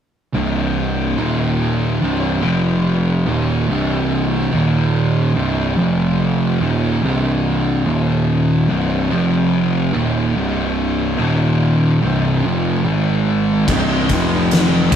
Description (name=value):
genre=stoner and doom metal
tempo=72 BPM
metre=4/4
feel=straight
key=C minor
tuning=A4 = 440 Hz
part: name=fuzz guitar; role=riff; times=0.3-15.0 s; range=C2 to Ab3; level=-17 LUFS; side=right 3 dB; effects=distortion
part: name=thick fuzz guitar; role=riff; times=0.3-15.0 s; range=C2 to Ab3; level=-22 LUFS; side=left 7 dB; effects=distortion
part: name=fuzz picked electric bass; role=bass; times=0.3-15.0 s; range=C1 to Ab1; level=-22 LUFS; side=left 2 dB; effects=overdrive
part: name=oversized low-tuned drum kit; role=drums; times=13.7-15.0 s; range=crash cymbal, kick drum, ride cymbal, snare drum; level=-17 LUFS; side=left 1 dB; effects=none
room=light reverb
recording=rough rehearsal-room recording, tube saturation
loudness=-15 LUFS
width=side -8 dB against mid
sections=0.3-13.7 A section; 13.7-15.0 B section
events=none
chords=0.3 C5; 1.2 Eb5; 2.0 C5; 2.4 F5; 3.3 Cm; 4.5 Eb5; 5.4 C5; 5.8 F5; 6.6 Cm; 7.9 Eb5; 8.7 C5; 9.1 F5; 9.9 Cm; 11.2 Eb5; 12.0 C5; 12.9 Ab5; 13.7 C5; 14.1 F5